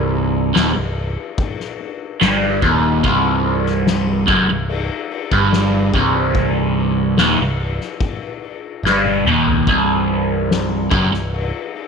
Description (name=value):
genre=psychedelic rock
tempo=72 BPM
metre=4/4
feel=straight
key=unclear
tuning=A4 = 441 Hz
part: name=overdriven electric guitar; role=riff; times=0.0-11.5 s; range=C2 to G2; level=-16 LUFS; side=right 1 dB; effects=phaser
part: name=picked electric bass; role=bass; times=0.0-11.5 s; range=C1 to G1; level=-22 LUFS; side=right 1 dB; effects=none
part: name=soft-mallet drum kit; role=drums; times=0.1-11.9 s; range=kick drum, ride cymbal, snare drum, toms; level=-22 LUFS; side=left 4 dB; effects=none
room=light reverb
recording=1960s-style stereo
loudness=-15 LUFS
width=side -5 dB against mid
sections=0.0-11.9 A section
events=drum fill 8.8-9.7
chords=0.0 C5